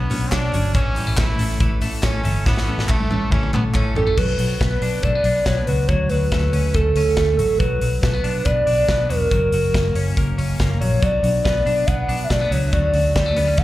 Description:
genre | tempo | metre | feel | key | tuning
jangly indie pop | 140 BPM | 4/4 | straight | B minor | A4 = 439 Hz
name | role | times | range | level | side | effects
bright trumpet | second line | 0.0-4.1 s | A3 to E4 | -28 LUFS | right 1 dB | plate reverb, slapback echo
picked steel-string acoustic guitar | accompaniment | 0.0-4.2, 11.0-13.6 s | A2 to C#5 | -30 LUFS | right 6 dB | plate reverb, slapback echo
twelve-string electric guitar | arpeggios | 0.0-13.6 s | E3 to D4 | -27 LUFS | left 4 dB | spring reverb, slapback echo, digital delay
vintage muted fingered electric bass | bass | 0.0-13.6 s | E1 to B2 | -21 LUFS | equal | none
modern studio drum kit | drums | 0.1-13.6 s | crash cymbal, hi-hat, kick drum, snare drum, toms | -23 LUFS | equal | none
group handclap | percussion | 0.3-3.8 s | none | -30 LUFS | left 1 dB | none
warbly nostalgic lead | melody | 4.0-13.6 s | A4 to F#5 | -20 LUFS | equal | chorus, plate reverb, slapback echo
room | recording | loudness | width
little or no reverb | live gig heard through the venue's PA, club reverb | -17 LUFS | side -15 dB against mid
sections
0.0-4.2 A section; 4.2-13.6 B section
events
drum fill 2.5-4.2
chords
0.0 Bmadd9; 0.8 A; 4.2 Bm; 5.9 Dmaj7; 7.6 Bm; 9.3 F#; 11.0 Bm; 12.7 Dmaj7

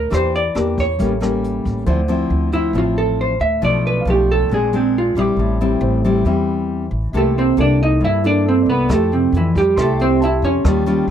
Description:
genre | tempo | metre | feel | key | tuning
bossa nova | 137 BPM | 4/4 | straight | D minor | A4 = 440 Hz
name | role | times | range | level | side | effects
vintage hollow-body jazz guitar | melody | 0.0-11.1 s | C3 to E5 | -17 LUFS | right 2 dB | none
nylon-string guitar | accompaniment | 0.0-11.1 s | G2 to A4 | -20 LUFS | left 2 dB | none
warm grand piano | accompaniment | 0.0-11.1 s | A4 to C6 | -31 LUFS | right 4 dB | none
upright bass | bass | 0.0-11.1 s | A1 to F2 | -20 LUFS | equal | none
jazz brush drum kit | drums | 0.1-1.8, 8.9-11.0 s | hi-hat, kick drum, rim click | -23 LUFS | equal | none
room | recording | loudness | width
little or no reverb | dry, close 1970s-style studio recording | -14 LUFS | side -9 dB against mid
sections
0.0-1.9 A section; 1.9-11.1 B section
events
hollow-body jazz guitar solo 1.9-11.1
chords
0.1 Em7b5; 1.0 A7b9; 1.9 Dm9; 3.6 Bm7b5; 4.5 Bb9; 5.4 Am7; 7.1 C13; 8.9 Fmaj9

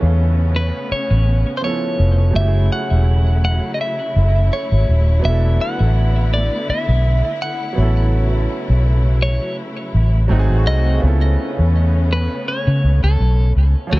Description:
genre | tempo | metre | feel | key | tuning
R&B | 83 BPM | 4/4 | swing 54% on 16ths | unclear | A4 = 439 Hz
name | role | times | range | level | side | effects
clear baby grand piano | accompaniment | 0.0-14.0 s | E#3 to A4 | -26 LUFS | right 3 dB | tape echo
warm studio string section | sustained chords | 0.0-13.9 s | B#2 to G#4 | -27 LUFS | left 1 dB | none
vintage muted fingered electric bass | bass | 0.0-14.0 s | D#1 to C#3 | -14 LUFS | equal | none
clean electric guitar | melody | 0.6-14.0 s | B3 to F#5 | -24 LUFS | equal | phaser, tape echo
room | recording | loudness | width
small room ambience | echo-heavy mix | -14 LUFS | side -20 dB against mid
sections
0.0-13.9 A section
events
none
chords
0.0 C#7alt; 2.3 F#m7; 5.2 E7sus4; 7.8 A6; 10.3 G#7b9; 11.0 C#7alt

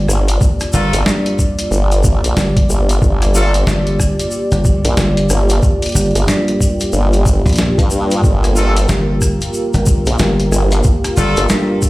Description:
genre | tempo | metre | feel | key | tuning
glitch hop | 92 BPM | 4/4 | swing 61% on 16ths | G minor | A4 = 440 Hz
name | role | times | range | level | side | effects
dark analog pad | sustained chords | 0.0-11.9 s | Bb3 to D5 | -20 LUFS | equal | chorus, sidechain pumping
dry thumbed slap bass | bass | 0.0-11.9 s | G1 to G2 | -16 LUFS | equal | none
formant-sweep wobble bass | bass | 0.1-11.5 s | G1 to G2 | -14 LUFS | equal | chorus, tube saturation
boom bap sampler-style drum kit | drums | 0.1-11.7 s | hi-hat, rim click, snare drum | -21 LUFS | equal | studio reverb
tube shaker | percussion | 0.1-11.9 s | none | -26 LUFS | left 2 dB | none
electronic kick drum | drums | 0.4-11.9 s | none | -13 LUFS | equal | overdrive, studio reverb
warm horn section | stabs | 0.7-3.5, 8.6-11.4 s | A3 to A4 | -22 LUFS | left 1 dB | sidechain pumping, digital delay
room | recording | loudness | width
little or no reverb | played on a big sound system in a bare room, large studio reverb | -12 LUFS | side -19 dB against mid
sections
0.0-11.9 A section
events
none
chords
0.0 Gm7

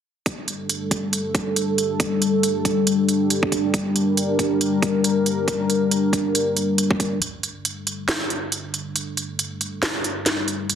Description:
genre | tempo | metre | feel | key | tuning
deep dubstep | 138 BPM | 4/4 | swing 57% on 16ths, half-time | G minor | A4 = 441 Hz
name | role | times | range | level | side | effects
dark analog pad | sustained chords | 0.3-10.8 s | G3 to Bb4 | -22 LUFS | left 1 dB | chorus
electronic kick drum | drums | 0.3-7.1 s | none | -26 LUFS | equal | high-pass filter on kick, high-pass filter on room
garage drum kit | drums | 0.3-10.8 s | hi-hat, snare drum | -24 LUFS | right 2 dB | none
room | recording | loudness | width
moderate spring reverb, RT60 1.9 s, digital ambience | dense, heavily limited modern master | -20 LUFS | side -8 dB against mid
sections
0.3-7.2 A section; 7.2-10.8 B section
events
build-up 7.2-10.8; filter sweep on analog synth pad 7.2-10.8; filter sweep 7.2-10.8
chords
0.3 Gm; 7.2 G5

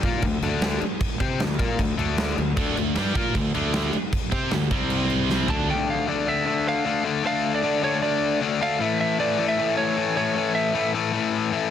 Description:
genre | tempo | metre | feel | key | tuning
hard rock | 154 BPM | 4/4 | straight | D minor, D harmonic minor from 5.7 s | A4 = 440 Hz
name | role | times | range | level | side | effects
cranked stack guitar | riff | 0.0-11.7 s | A2 to C5 | -24 LUFS | left 7 dB | overdrive
fuzz fingered electric bass | bass | 0.0-5.7 s | C2 to C3 | -28 LUFS | right 1 dB | overdrive
huge arena drum kit | drums | 0.0-5.6 s | crash cymbal, kick drum, snare drum, toms | -26 LUFS | right 1 dB | none
high-gain distorted guitar | riff | 2.6-5.7 s | C3 to C5 | -28 LUFS | right 14 dB | distortion
lightly driven lead guitar | melody | 5.5-10.9 s | C#5 to A5 | -25 LUFS | right 3 dB | none
room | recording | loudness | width
studio reverb | dense, heavily limited modern master | -21 LUFS | side -9 dB against mid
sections
0.0-5.7 A section; 5.7-11.7 B section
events
drum fill 5.3-5.7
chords
0.0 Dm; 4.7 C5; 5.5 D5; 8.8 A

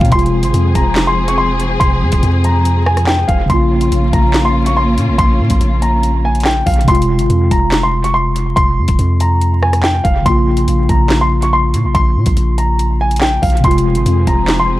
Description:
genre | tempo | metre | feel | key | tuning
hip hop, drill | 142 BPM | 4/4 | half-time | F minor | A4 = 438 Hz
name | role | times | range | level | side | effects
dark grand piano | melody | 0.0-14.8 s | F5 to Db6 | -17 LUFS | equal | dub echo
mellow tine electric piano | accompaniment | 0.0-14.8 s | C3 to F4 | -18 LUFS | equal | medium stereo tremolo, dub echo
warm studio string section | sustained chords | 0.0-6.8, 13.6-14.8 s | F3 to Ab4 | -21 LUFS | left 2 dB | none
long sustained 808-style bass | bass | 0.0-14.8 s | F1 to Bb2 | -15 LUFS | equal | none
drill drum kit | drums | 0.0-14.6 s | handclaps, hi-hat, kick drum, rim click, snare drum | -17 LUFS | equal | none
room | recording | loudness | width
little or no reverb | echo-heavy mix, vinyl crackle | -11 LUFS | side -16 dB against mid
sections
0.0-6.9 A section; 6.9-14.8 A section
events
none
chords
0.1 Fm; 3.5 Bbm; 6.9 Fm; 10.3 Bbm; 13.6 Fm

